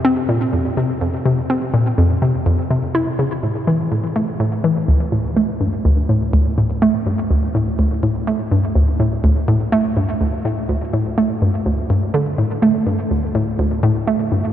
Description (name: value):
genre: ambient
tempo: 124 BPM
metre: 4/4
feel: straight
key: unclear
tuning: A4 = 437 Hz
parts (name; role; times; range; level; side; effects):
- hollow square pluck; solo; 0.0-14.5 s; D2 to E4; -15 LUFS; equal; chorus, tape echo
room: wet huge ambient reverb, RT60 7.8 s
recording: dark, warm production, nothing above 10.9 kHz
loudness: -16 LUFS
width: side -11 dB against mid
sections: 0.0-4.9 A section; 4.9-14.5 B section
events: none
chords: none